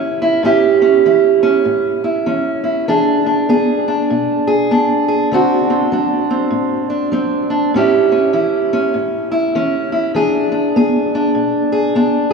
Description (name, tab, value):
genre	blues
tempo	99 BPM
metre	4/4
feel	swing 61% on 8ths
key	A mixolydian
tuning	A4 = 439 Hz
part	fingerpicked steel-string acoustic guitar	solo	0.0-12.3 s	A2 to G#4	-13 LUFS	right 2 dB	none
room	wet church reverb, RT60 3.5 s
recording	recorded in a church or concert hall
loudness	-13 LUFS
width	side -4 dB against mid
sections	0.0-12.3 A section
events	none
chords	0.0 A7; 2.9 E7; 5.3 D7; 7.7 A7; 10.1 E7